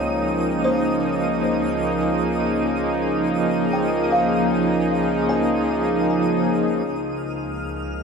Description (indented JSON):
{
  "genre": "ambient",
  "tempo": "77 BPM",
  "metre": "4/4",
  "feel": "straight",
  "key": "unclear",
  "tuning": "A4 = 441 Hz",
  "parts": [
    { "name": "warm analog pad", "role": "sustained chords", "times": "0.0-8.0 s", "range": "Db2 to G5", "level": "-20 LUFS", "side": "equal", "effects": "chorus, tremolo" },
    { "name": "buzzing kalimba", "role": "arpeggios", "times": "0.0-7.2 s", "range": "C5 to Ab5", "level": "-28 LUFS", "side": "equal", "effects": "ping-pong delay" },
    { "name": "pedal harmonium", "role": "drone", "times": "0.0-6.9 s", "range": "Db3 to Db4", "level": "-29 LUFS", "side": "left 1 dB", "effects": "none" },
    { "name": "twinkling granular texture", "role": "texture", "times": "0.0-8.0 s", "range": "Eb6 to F6", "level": "-33 LUFS", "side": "equal", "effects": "built-in reverb" },
    { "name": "rich symphonic double bass section", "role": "bass", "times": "6.9-8.0 s", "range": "Db2", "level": "-33 LUFS", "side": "left 1 dB", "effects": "none" }
  ],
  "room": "wet huge ambient reverb, RT60 7.5 s",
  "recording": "cassette tape",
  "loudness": "-19 LUFS",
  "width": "side -5 dB against mid",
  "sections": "0.0-6.9 A section; 6.9-8.0 B section",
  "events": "none",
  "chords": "0.0 Ab6/Db; 6.9 Db"
}